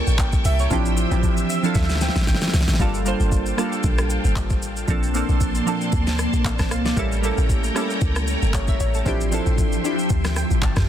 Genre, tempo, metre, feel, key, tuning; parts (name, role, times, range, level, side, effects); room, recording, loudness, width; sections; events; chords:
amapiano; 115 BPM; 4/4; swing 55% on 16ths; D minor; A4 = 442 Hz
glassy digital keys; accompaniment; 0.0-10.9 s; E3 to A5; -25 LUFS; right 1 dB; chorus, phaser
string machine, cellos; sustained chords; 0.0-10.9 s; F3 to E6; -27 LUFS; equal; ensemble chorus, sidechain pumping
deep log drum bass; bass; 0.1-10.8 s; G1 to D2; -22 LUFS; equal
smooth R&B drum kit; drums; 0.1-10.9 s; handclaps, hi-hat, kick drum, rim click, shaker, snare drum, toms; -24 LUFS; equal
little or no reverb; dense, heavily limited modern master; -18 LUFS; side -10 dB against mid
0.0-2.8 A section; 2.8-10.9 B section
drop 0.0-2.8; synth keys fill 1.2-2.8, 10.1-10.9; drum fill 1.8-2.8
0.0 A7b9; 0.7 Dm11/A; 2.8 Gm9; 4.9 Bbmaj9; 7.0 A7b9; 9.1 Dm11/A